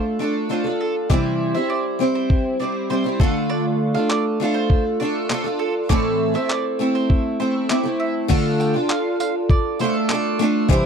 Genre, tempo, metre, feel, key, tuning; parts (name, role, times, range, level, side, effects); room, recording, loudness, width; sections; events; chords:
acoustic pop; 100 BPM; 4/4; straight; D minor; A4 = 440 Hz
picked acoustic archtop guitar; accompaniment; 0.0-10.9 s; A2 to C5; -19 LUFS; equal; double-tracked left and right
mandolin; arpeggios; 0.0-10.5 s; A4 to G5; -29 LUFS; right 7 dB
dusty soul sampler-style drum kit; drums; 1.1-10.8 s; crash cymbal, handclaps, kick drum, tambourine; -19 LUFS; equal
light reverb; dry, close 1970s-style studio recording; -18 LUFS; side -6 dB against mid
0.0-8.3 A section; 8.3-10.9 B section
0.0 Dm; 1.1 C; 3.2 Dm; 5.9 Am; 8.3 Dm